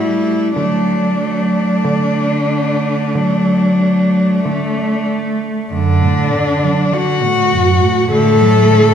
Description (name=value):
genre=classical, lyrical piece for cello ensemble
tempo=46-52 BPM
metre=4/4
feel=rubato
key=D major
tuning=A4 = 438 Hz
part: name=rich cello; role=melody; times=0.0-8.9 s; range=D4 to A4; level=-16 LUFS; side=left 4 dB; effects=none
part: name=rich cello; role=second line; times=0.0-8.9 s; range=F#2 to A3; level=-18 LUFS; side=right 5 dB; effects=none
part: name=clear cello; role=accompaniment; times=0.0-8.9 s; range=D3 to A3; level=-17 LUFS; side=left 1 dB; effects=none
part: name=rich cello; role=bass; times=0.0-8.9 s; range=A2 to D3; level=-19 LUFS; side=right 2 dB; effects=none
room=wet recital hall reverb, RT60 1.8 s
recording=recorded in a church or concert hall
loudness=-12 LUFS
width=side -8 dB against mid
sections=0.0-5.7 A section; 5.7-8.9 A section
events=none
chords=0.0 A5; 0.6 D; 5.7 D/F#